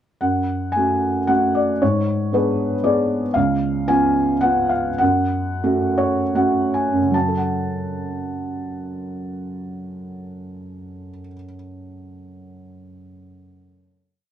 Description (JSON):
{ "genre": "classical, lyrical solo piano", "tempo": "73-118 BPM", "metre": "3/4", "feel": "rubato", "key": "F# harmonic minor", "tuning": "A4 = 440 Hz", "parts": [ { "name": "felt-muted upright piano", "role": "solo", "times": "0.2-14.3 s", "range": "C#2 to A5", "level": "-19 LUFS", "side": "equal", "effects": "none" } ], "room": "moderate studio ambience, RT60 0.5 s", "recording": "dark, warm production", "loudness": "-17 LUFS", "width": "side -10 dB against mid", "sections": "0.2-7.1 theme; 7.1-11.9 final chord", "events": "slowing down 3.4-7.1; felt piano fill 5.6-7.1", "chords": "0.2 F#m; 1.8 G#dim; 3.4 C#7; 5.0 F#m", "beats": "| 0.21 0.75 1.29 | 1.82 2.34 2.85 | 3.36 3.89 4.44 | 5.01 5.64 6.35 | 7.14 7.95 8.74 | 9.54 10.33 11.11" }